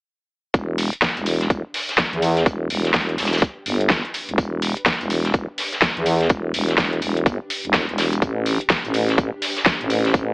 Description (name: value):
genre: bass house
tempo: 125 BPM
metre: 4/4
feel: swing 62% on 16ths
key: E minor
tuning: A4 = 440 Hz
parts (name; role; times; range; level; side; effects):
- growling FM bass; bass; 0.5-10.3 s; E1 to E2; -21 LUFS; equal; tube saturation, sidechain pumping
- big-room dance drum kit; drums; 0.5-10.3 s; hi-hat, snare drum; -22 LUFS; equal; overdrive, small room reverb
- electronic kick drum; drums; 0.5-10.3 s; none; -17 LUFS; equal; small room reverb
- warm soul drum kit; drums; 0.5-10.3 s; hi-hat, snare drum; -28 LUFS; equal; high-pass filter on hats, small room reverb, high-pass filter on snare, high-pass filter on room
- granular cloud pad; texture; 1.7-10.3 s; D4 to C5; -36 LUFS; equal; none
room: little or no reverb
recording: AM radio sound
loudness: -18 LUFS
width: side -35 dB against mid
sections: 0.5-10.3 A section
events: filter sweep on FM bass 0.5-10.3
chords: 0.5 Em; 8.2 Am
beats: | 0.54 1.02 1.50 1.98 | 2.46 2.94 3.42 3.90 | 4.38 4.86 5.34 5.82 | 6.30 6.78 7.26 7.74 | 8.22 8.70 9.18 9.66 | 10.14